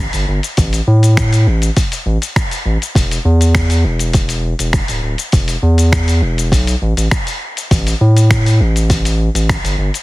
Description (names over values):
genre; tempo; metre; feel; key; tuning
sunset chillout; 101 BPM; 4/4; straight; unclear; A4 = 440 Hz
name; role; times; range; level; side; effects
round analog bass; bass; 0.0-9.9 s; D1 to A2; -12 LUFS; equal; none
dusty soul sampler-style drum kit; drums; 0.1-10.0 s; finger snaps, hi-hat, shaker; -20 LUFS; left 2 dB; none
electronic kick drum; drums; 0.6-9.6 s; none; -15 LUFS; equal; none
room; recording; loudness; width
little or no reverb; heavily compressed radio sound, multiband compression; -12 LUFS; side -19 dB against mid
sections
0.0-10.0 A section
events
none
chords
none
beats
| 0.58 1.17 1.76 2.36 | 2.95 3.55 4.14 4.74 | 5.33 5.92 6.52 7.11 | 7.71 8.30 8.89 9.49